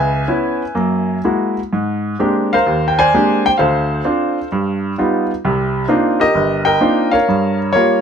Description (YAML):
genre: solo jazz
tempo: 129 BPM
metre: 4/4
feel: swing 68% on 8ths, rubato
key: C minor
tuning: A4 = 440 Hz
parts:
  - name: bright baby grand piano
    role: solo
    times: 0.0-8.0 s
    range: G1 to Ab5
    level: -14 LUFS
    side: equal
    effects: none
room: light reverb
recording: none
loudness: -14 LUFS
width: side -7 dB against mid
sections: 0.0-8.0 A section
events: none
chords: 0.0 Dbm7; 0.8 F#9; 1.7 Abmaj9#11; 3.6 Dm7; 4.5 Gaug7; 5.4 Cm11; 7.3 Gm7b5